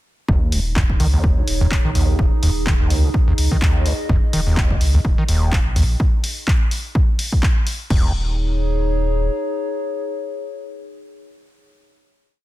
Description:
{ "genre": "acid house", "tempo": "126 BPM", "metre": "4/4", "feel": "swing 57% on 16ths", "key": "unclear", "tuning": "A4 = 441 Hz", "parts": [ { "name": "overdriven acid bass", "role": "riff", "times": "0.3-8.1 s", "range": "Db2 to Eb3", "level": "-19 LUFS", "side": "equal", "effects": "distortion, sidechain pumping" }, { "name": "warm sub bass", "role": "bass", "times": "0.3-9.3 s", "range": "Eb1 to Db2", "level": "-20 LUFS", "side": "equal", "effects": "tube saturation, sidechain pumping" }, { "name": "electronic kick drum", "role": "drums", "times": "0.3-8.0 s", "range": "none", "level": "-18 LUFS", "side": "equal", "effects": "none" }, { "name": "warbly tape-like pad", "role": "texture", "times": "0.7-11.7 s", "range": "Eb4 to Eb5", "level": "-27 LUFS", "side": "equal", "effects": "chorus, built-in reverb, sidechain pumping" }, { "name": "punchy analog drum machine", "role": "drums", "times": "0.5-8.0 s", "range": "crash cymbal, handclaps, hi-hat", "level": "-26 LUFS", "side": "left 1 dB", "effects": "none" } ], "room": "little or no reverb", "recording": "dense, heavily limited modern master", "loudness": "-16 LUFS", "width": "side -16 dB against mid", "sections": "0.3-7.9 groove; 7.9-11.7 final chord", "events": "filter sweep on acid bass 0.3-6.0", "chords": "0.3 Eb5; 7.9 Eb7sus4" }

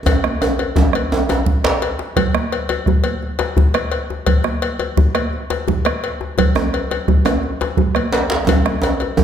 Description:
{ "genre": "west african traditional, West African drum ensemble", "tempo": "114 BPM (dotted quarters)", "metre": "12/8", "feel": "straight", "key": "none", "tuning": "none", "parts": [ { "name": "bombo", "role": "percussion", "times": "0.1-9.2 s", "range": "none", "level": "-19 LUFS", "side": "right 1 dB", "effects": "none" }, { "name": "congas", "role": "percussion", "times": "0.1-9.2 s", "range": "none", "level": "-23 LUFS", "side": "right 7 dB", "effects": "none" }, { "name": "cowbell", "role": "percussion", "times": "0.1-9.2 s", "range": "none", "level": "-23 LUFS", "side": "left 6 dB", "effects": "none" }, { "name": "djembe", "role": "percussion", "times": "0.1-9.2 s", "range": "none", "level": "-23 LUFS", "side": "left 5 dB", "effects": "none" }, { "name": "djembe", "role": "percussion", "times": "0.1-1.8, 6.6-9.2 s", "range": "none", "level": "-19 LUFS", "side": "right 2 dB", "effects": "none" } ], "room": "wet recital hall reverb, RT60 1.5 s", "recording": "none", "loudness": "-15 LUFS", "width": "side -9 dB against mid", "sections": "0.0-2.2 A section; 2.2-9.2 B section", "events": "drum fill 0.1-2.2, 8.5-9.2", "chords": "none" }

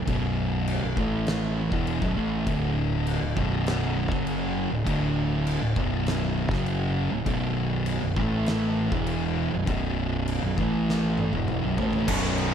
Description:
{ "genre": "stoner and doom metal", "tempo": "100 BPM", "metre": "4/4", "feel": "straight", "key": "B minor", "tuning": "A4 = 439 Hz", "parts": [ { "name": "thick fuzz guitar", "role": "riff", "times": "0.0-12.5 s", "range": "B1 to A3", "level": "-29 LUFS", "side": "left 10 dB", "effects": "distortion" }, { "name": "thick fuzz guitar", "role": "riff", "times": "0.0-12.5 s", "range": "B1 to A3", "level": "-28 LUFS", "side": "right 7 dB", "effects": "distortion" }, { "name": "growling fingered electric bass", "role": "bass", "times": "0.0-12.5 s", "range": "B0 to A1", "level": "-31 LUFS", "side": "equal", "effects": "overdrive" }, { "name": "oversized low-tuned drum kit", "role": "drums", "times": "0.1-12.5 s", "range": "crash cymbal, kick drum, snare drum, toms", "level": "-32 LUFS", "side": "equal", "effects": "none" }, { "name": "tight distorted guitar", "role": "riff", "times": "12.1-12.5 s", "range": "B1 to B2", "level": "-29 LUFS", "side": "equal", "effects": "distortion" } ], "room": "little or no reverb", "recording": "none", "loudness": "-24 LUFS", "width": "side -8 dB against mid", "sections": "0.0-12.1 A section", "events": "drum fill 10.9-12.1", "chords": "0.0 B5; 1.0 A5; 1.7 B5; 2.5 D5; 3.4 B5; 4.1 F#5; 4.7 D5; 5.8 B5; 6.5 F#5; 7.1 D5; 7.3 B5; 8.2 A5; 8.9 E5; 9.5 B5; 10.6 A5; 11.3 B5" }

